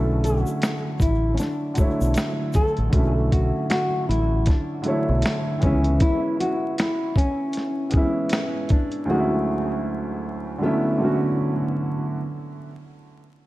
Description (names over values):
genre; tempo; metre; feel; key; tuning
lo-fi hip hop; 78 BPM; 4/4; swing 60% on 16ths; B dorian; A4 = 440 Hz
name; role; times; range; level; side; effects
nylon-string guitar; melody; 0.0-11.7 s; B3 to A4; -27 LUFS; left 1 dB; tape echo
dark upright piano; accompaniment; 0.0-12.2 s; D2 to C#5; -24 LUFS; right 1 dB; cassette tape, tape echo
deep dub fingered electric bass; bass; 0.0-6.0 s; A1 to C#2; -22 LUFS; equal; none
dusty soul sampler-style drum kit; drums; 0.2-9.1 s; finger snaps, hi-hat, kick drum, snare drum; -22 LUFS; equal; vintage 12-bit sampler grit
tube shaker; percussion; 0.3-2.8 s; none; -46 LUFS; left 4 dB; tape echo
room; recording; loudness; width
light reverb, studio reverb; echo-heavy mix, vinyl crackle, lossy compression artefacts; -20 LUFS; side -17 dB against mid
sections
0.0-12.2 A section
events
none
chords
0.0 Bm11; 5.6 C#m7; 9.1 Dmaj9#11; 10.6 Bm11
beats
0.62 1.39 2.16 | 2.93 3.70 4.47 5.24 | 6.01 6.78 7.55 8.32 | 9.09 9.85 10.62 11.39